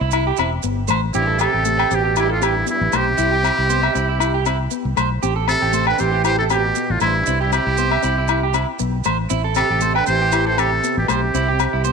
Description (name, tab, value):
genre	highlife guitar band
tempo	118 BPM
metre	4/4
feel	straight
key	A minor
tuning	A4 = 440 Hz
part	mellow electric guitar	accompaniment	0.0-11.9 s	A3 to E4	-27 LUFS	left 14 dB	spring reverb
part	electric guitar at the edge of break-up	arpeggios	0.0-11.9 s	E4 to G5	-23 LUFS	right 11 dB	none
part	fingered electric bass	bass	0.0-11.9 s	E1 to C2	-22 LUFS	equal	none
part	agogo bells	percussion	0.1-11.7 s	none	-25 LUFS	left 15 dB	none
part	maracas	percussion	0.1-11.9 s	none	-32 LUFS	right 16 dB	none
part	trumpet with metal mute	melody	1.1-11.9 s	E4 to C5	-20 LUFS	left 1 dB	none
part	growling trombone	second line	1.2-11.9 s	G2 to E3	-28 LUFS	right 12 dB	none
room	light reverb, small room ambience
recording	1960s-style stereo with parts hard left and right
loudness	-16 LUFS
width	side -5 dB against mid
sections	0.0-1.1 A section; 1.1-11.9 B section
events	none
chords	0.0 C; 1.1 Am7; 3.2 C; 5.2 Am7; 11.3 C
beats	0.13 0.64 | 1.15 1.66 2.17 2.68 | 3.19 3.70 4.21 4.72 | 5.23 5.74 6.25 6.76 | 7.27 7.78 8.29 8.80 | 9.31 9.82 10.33 10.84 | 11.35 11.86